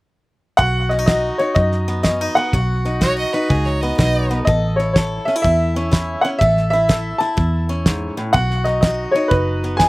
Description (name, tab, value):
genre	honky-tonk and classic country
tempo	124 BPM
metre	4/4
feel	swing 65% on 8ths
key	B mixolydian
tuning	A4 = 440 Hz
part	clear upright piano	melody	0.6-9.9 s	B4 to A5	-18 LUFS	equal	none
part	picked swing-style acoustic guitar	accompaniment	0.6-9.9 s	F#2 to A4	-23 LUFS	left 1 dB	slapback echo
part	vintage muted fingered electric bass	bass	0.6-9.9 s	F#1 to F#2	-20 LUFS	equal	none
part	damped 70s drum kit	drums	0.6-9.9 s	hi-hat, kick drum, snare drum	-18 LUFS	equal	none
part	bright fiddle	second line	3.0-4.4 s	G#4 to D#5	-22 LUFS	right 2 dB	none
room	little or no reverb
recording	recorded outdoors, with no room sound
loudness	-15 LUFS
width	side -20 dB against mid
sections	0.6-9.9 A section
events	none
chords	0.6 B; 4.5 A; 8.3 B